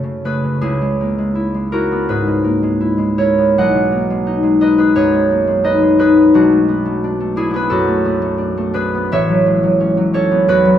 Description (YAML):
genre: classical, solo harp piece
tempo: 74-91 BPM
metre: 4/4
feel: rubato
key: C# minor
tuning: A4 = 440 Hz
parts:
  - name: concert harp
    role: solo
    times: 0.0-10.8 s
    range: A1 to F#5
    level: -12 LUFS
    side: equal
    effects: none
room: wet recital hall reverb, RT60 1.7 s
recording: none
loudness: -13 LUFS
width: side -10 dB against mid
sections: 0.6-10.8 A section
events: none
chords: 0.0 F#m6; 0.6 C#m7; 3.6 B69; 6.3 Bm7; 9.1 A69